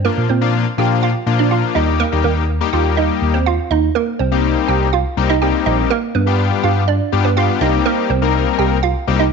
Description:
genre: dance-pop.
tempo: 123 BPM.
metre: 4/4.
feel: straight.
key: C minor.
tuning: A4 = 440 Hz.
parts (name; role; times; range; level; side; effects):
hollow square pluck; melody; 0.0-9.3 s; Bb3 to G5; -19 LUFS; right 12 dB; chorus, tape echo.
tine electric piano; bass; 0.0-9.3 s; Bb1 to Bb2; -18 LUFS; equal; wide subtle chorus.
big bright polysynth; accompaniment; 0.1-9.2 s; F3 to Bb4; -18 LUFS; left 13 dB; chorus.
room: light reverb.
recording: 1960s-style stereo with parts hard left and right, nothing above 7.6 kHz.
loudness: -14 LUFS.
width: side -5 dB against mid.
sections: 0.0-4.0 A section; 4.0-9.3 B section.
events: none.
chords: 0.1 Bb; 1.8 Eb; 4.0 Cm7; 5.9 G7; 7.6 Cm7.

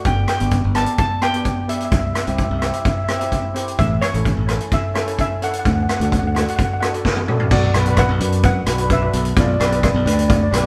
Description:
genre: calypso.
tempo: 129 BPM.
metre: 4/4.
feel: straight.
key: G major.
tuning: A4 = 440 Hz.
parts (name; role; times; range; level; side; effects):
steel pan; accompaniment; 0.0-10.7 s; B3 to B4; -28 LUFS; equal; none.
street-band drum kit; drums; 0.0-10.6 s; crash cymbal, hi-hat, kick drum, rim click, snare drum, toms; -22 LUFS; equal; none.
steel pan; melody; 0.1-10.6 s; F4 to A5; -26 LUFS; equal; none.
modern bright fingered electric bass; bass; 0.1-10.7 s; G1 to F#2; -23 LUFS; equal; none.
room: moderate stone room reverb, RT60 1.4 s.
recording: band playing live in one room.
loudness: -18 LUFS.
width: mono.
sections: 0.0-7.5 A section; 7.5-10.7 B section.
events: drum fill 7.0-7.5.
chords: 0.1 G; 1.9 C; 3.8 A; 5.6 D; 7.5 Bm; 9.4 G/B.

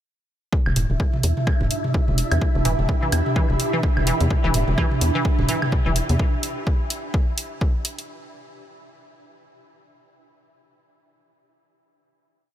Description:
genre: minimal techno.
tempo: 127 BPM.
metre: 4/4.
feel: swing 58% on 16ths.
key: E minor.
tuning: A4 = 440 Hz.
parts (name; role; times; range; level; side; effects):
electronic kick drum; drums; 0.5-7.7 s; none; -21 LUFS; equal; small room reverb.
ethereal airy pad; texture; 1.4-6.2 s; D4 to B5; -30 LUFS; right 1 dB; ensemble chorus, built-in reverb, phaser, sidechain pumping.
flickering grainy texture; texture; 0.9-6.2 s; E4 to E5; -32 LUFS; right 1 dB; built-in reverb, wide subtle chorus, sidechain pumping.
rubbery square bass; bass; 0.7-6.2 s; E1 to E2; -22 LUFS; equal; sidechain pumping.
electronic toms and woodblock; percussion; 0.7-6.2 s; none; -26 LUFS; right 1 dB; small room reverb.
electronic hi-hat; drums; 0.8-8.1 s; none; -27 LUFS; equal; small room reverb.
resonant blip pluck; riff; 2.7-5.9 s; E3; -28 LUFS; equal; lush chorus, sidechain pumping, ping-pong delay.
room: light reverb.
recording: none.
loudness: -19 LUFS.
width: side -11 dB against mid.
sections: 0.5-8.1 groove.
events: none.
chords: 0.5 Em7.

